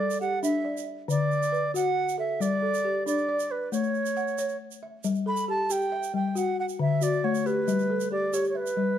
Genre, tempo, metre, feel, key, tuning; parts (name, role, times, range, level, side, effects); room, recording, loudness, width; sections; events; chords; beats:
west african traditional, West African string and xylophone music; 91 BPM (dotted quarters); 12/8; straight; G lydian; A4 = 440 Hz
bright baroque flute; melody; 0.0-9.0 s; B4 to B5; -28 LUFS; right 3 dB
balafon; arpeggios; 0.0-9.0 s; D3 to F#5; -27 LUFS; left 3 dB
tube shaker; percussion; 0.1-8.8 s; -40 LUFS; right 12 dB
moderate recital hall reverb, RT60 1.3 s; dark, warm production; -24 LUFS; side -10 dB against mid
0.0-5.0 A section; 5.0-9.0 B section
flute solo 5.0-9.0
0.0 G5; 1.1 D; 2.4 G5; 3.7 A; 5.0 Gsus2; 6.4 D; 7.7 G
0.43 1.09 1.75 | 2.41 3.07 3.73 4.39 | 5.05 5.71 6.37 7.02 | 7.68 8.34